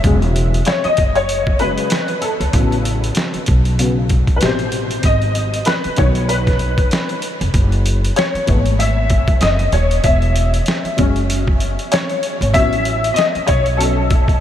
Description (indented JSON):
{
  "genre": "hip hop, jazz-hop",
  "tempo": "96 BPM",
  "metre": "4/4",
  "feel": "swing 58% on 16ths",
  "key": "unclear",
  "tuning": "A4 = 440 Hz",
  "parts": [
    { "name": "warm upright piano", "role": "accompaniment", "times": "0.0-14.4 s", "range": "B2 to E5", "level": "-18 LUFS", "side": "left 2 dB", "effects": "ensemble chorus" },
    { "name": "upright bass", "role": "bass", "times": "0.0-14.2 s", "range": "D#1 to C#2", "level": "-18 LUFS", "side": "equal", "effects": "none" },
    { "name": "trip hop sampler-style drum kit", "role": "drums", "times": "0.0-14.4 s", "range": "hi-hat, kick drum, snare drum", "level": "-18 LUFS", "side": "equal", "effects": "none" }
  ],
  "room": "moderate huge ambient reverb, RT60 8.1 s",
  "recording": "dreamy mix soaked in reverb",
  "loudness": "-14 LUFS",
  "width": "side -10 dB against mid",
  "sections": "0.0-14.4 A section",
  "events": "upright piano solo 0.0-14.4",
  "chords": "0.0 E69; 2.5 A6; 4.4 Am7; 5.0 G#m7; 7.5 F#m11; 10.0 E69; 12.5 A6",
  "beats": "| 0.04 0.67 1.29 1.92 | 2.54 3.17 3.79 4.42 | 5.04 5.67 6.29 6.92 | 7.54 8.17 8.79 9.42 | 10.04 10.67 11.29 11.92 | 12.54 13.17 13.79"
}